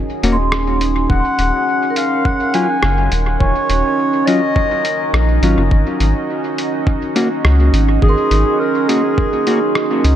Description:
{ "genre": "ambient dub", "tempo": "104 BPM", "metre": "4/4", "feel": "straight", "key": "unclear", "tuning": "A4 = 439 Hz", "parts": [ { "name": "deep dark ambient pad", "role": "sustained chords", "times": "0.0-10.2 s", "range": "Db4 to Eb5", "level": "-19 LUFS", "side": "right 2 dB", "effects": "chorus, built-in reverb" }, { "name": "vibraphone with medium hard mallets", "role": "arpeggios", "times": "0.0-10.2 s", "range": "Bb4 to C6", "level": "-26 LUFS", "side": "right 2 dB", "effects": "dub echo" }, { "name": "mellow electric guitar", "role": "stabs", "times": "0.2-9.6 s", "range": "Gb3 to Gb4", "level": "-22 LUFS", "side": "left 2 dB", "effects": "dub echo" }, { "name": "soft dub sub bass", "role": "bass", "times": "0.2-10.2 s", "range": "Eb1 to Db2", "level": "-15 LUFS", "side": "equal", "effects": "none" }, { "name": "lo-fi sampler-style drum kit", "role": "drums", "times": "0.2-10.2 s", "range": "hi-hat, rim click", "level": "-24 LUFS", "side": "equal", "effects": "dub echo" }, { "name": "dark clarinet", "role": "melody", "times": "1.1-10.0 s", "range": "Ab4 to Ab5", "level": "-19 LUFS", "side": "left 1 dB", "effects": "dub echo" }, { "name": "electronic kick drum", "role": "drums", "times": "1.1-9.3 s", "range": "none", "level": "-17 LUFS", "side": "equal", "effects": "overdrive" } ], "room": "light reverb, digital ambience", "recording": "none", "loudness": "-13 LUFS", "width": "side -10 dB against mid", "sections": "0.0-10.2 A section", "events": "none", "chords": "0.0 Ab7sus4; 1.1 Ebm7; 5.7 Ab7sus4" }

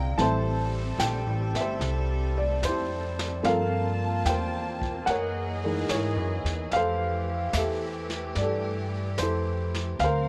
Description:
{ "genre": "jazz ballad", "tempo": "73 BPM", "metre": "4/4", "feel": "swing 69% on 8ths", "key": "F major", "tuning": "A4 = 437 Hz", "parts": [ { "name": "dark upright piano", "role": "accompaniment", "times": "0.0-10.3 s", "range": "E3 to Bb5", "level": "-30 LUFS", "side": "equal", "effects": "none" }, { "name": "warm studio string section", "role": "sustained chords", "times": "0.0-10.3 s", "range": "D3 to A5", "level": "-37 LUFS", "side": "equal", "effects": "none" }, { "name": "upright bass", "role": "bass", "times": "0.0-10.3 s", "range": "G1 to Ab2", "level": "-32 LUFS", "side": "equal", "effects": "none" }, { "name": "vintage brush drum kit", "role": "drums", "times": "0.2-10.3 s", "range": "brushed snare drum, hi-hat, kick drum, snare drum", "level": "-38 LUFS", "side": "equal", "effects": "none" } ], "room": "light reverb", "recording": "none", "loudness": "-28 LUFS", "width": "mono", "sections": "0.0-10.3 A section", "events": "none", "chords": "0.2 Am7; 3.4 Gm11; 5.1 Gb13; 6.7 Fmaj9" }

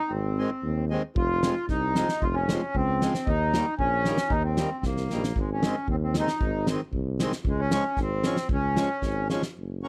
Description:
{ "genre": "alpine folk, alpine dance band", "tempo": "114 BPM", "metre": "2/4", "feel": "straight", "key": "Db major", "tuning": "A4 = 440 Hz", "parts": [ { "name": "accordion", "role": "melody", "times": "0.0-9.3 s", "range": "Ab3 to F4", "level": "-30 LUFS", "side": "equal", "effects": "none" }, { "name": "mellow tuba", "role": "bass", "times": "0.1-9.9 s", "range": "F1 to Eb2", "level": "-31 LUFS", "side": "equal", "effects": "none" }, { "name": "accordion", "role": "accompaniment", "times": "0.4-9.9 s", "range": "Eb3 to Db4", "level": "-33 LUFS", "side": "equal", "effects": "none" }, { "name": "loose indie drum kit", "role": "drums", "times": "1.2-9.6 s", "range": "kick drum, snare drum", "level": "-32 LUFS", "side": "equal", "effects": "none" } ], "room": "little or no reverb", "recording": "none", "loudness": "-26 LUFS", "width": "mono", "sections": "0.0-9.6 A section", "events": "drum fill 4.8-5.4, 9.0-9.6", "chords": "0.0 Ab; 1.2 Fm; 3.3 Eb7; 5.4 Ab; 7.5 Db" }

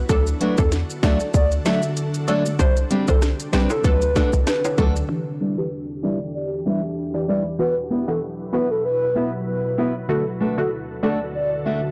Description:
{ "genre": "dancehall", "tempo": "96 BPM", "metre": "4/4", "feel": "swing 56% on 16ths", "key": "E minor", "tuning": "A4 = 439 Hz", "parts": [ { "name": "punchy chord stab", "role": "accompaniment", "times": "0.0-11.2 s", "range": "D3 to C5", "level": "-30 LUFS", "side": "equal", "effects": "chorus, phaser, low-pass filter" }, { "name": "ethereal airy pad", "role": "sustained chords", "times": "0.0-11.9 s", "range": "D2 to B4", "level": "-32 LUFS", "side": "equal", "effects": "ensemble chorus, built-in reverb, sidechain pumping, low-pass filter" }, { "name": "short 808-style bass", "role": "bass", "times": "0.0-5.0 s", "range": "B1 to E2", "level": "-23 LUFS", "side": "equal", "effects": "none" }, { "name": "hollow clarinet-like synth lead", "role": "melody", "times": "0.1-11.8 s", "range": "A4 to E5", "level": "-27 LUFS", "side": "equal", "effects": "chorus, low-pass filter" }, { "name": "island pop drum kit", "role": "drums", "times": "0.1-4.9 s", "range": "hi-hat, kick drum, rim click, snare drum", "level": "-24 LUFS", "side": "equal", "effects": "overdrive" }, { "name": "maracas and timbales", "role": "percussion", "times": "0.1-5.1 s", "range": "none", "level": "-35 LUFS", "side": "equal", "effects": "none" }, { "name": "fingerpicked steel-string acoustic guitar", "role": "arpeggios", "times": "0.4-11.8 s", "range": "F#3 to B4", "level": "-26 LUFS", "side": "equal", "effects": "low-pass filter" } ], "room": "light reverb", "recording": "blown-out, overdriven recording, overdrive", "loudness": "-21 LUFS", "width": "mono", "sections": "0.0-5.1 A section; 5.1-11.9 B section", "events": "filter sweep 5.1-11.9", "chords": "0.1 D; 2.6 Csus2; 3.8 D; 5.1 Em7; 7.6 Bsus4; 10.1 D" }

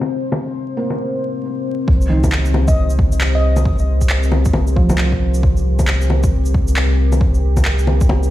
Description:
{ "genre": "future garage", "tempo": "135 BPM", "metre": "4/4", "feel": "swing 61% on 16ths", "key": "C minor", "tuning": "A4 = 445 Hz", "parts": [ { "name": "felt-muted upright piano", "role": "accompaniment", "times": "0.0-8.3 s", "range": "Eb3 to Bb3", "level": "-26 LUFS", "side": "right 2 dB", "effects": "sidechain pumping, digital delay" }, { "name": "deep dark ambient pad", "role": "sustained chords", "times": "0.0-8.3 s", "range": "C4 to C5", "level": "-24 LUFS", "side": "left 3 dB", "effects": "chorus, built-in reverb, sidechain pumping" }, { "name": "electronic bongos, shaker and handclaps", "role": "drums", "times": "0.0-8.3 s", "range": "none", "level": "-21 LUFS", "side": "left 1 dB", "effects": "low-pass filter on perc, low-pass filter on snare, low-pass filter on room" }, { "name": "warm sub bass", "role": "bass", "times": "1.9-8.3 s", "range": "C2", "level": "-16 LUFS", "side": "equal", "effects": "sidechain pumping" }, { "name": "electronic kick drum", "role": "drums", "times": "1.9-8.1 s", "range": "none", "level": "-17 LUFS", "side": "equal", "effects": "overdrive" }, { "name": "soft struck synth lead", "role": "melody", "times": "2.7-3.8 s", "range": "Eb5", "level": "-25 LUFS", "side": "right 1 dB", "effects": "chorus, ping-pong delay" } ], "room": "light reverb, digital ambience", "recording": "played on a big sound system in a bare room, stone room reverb, vinyl crackle, low-pass filter", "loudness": "-14 LUFS", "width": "side -14 dB against mid", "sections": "0.0-1.9 A section; 1.9-8.3 B section", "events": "filter sweep 0.0-1.9", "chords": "0.0 Cm7" }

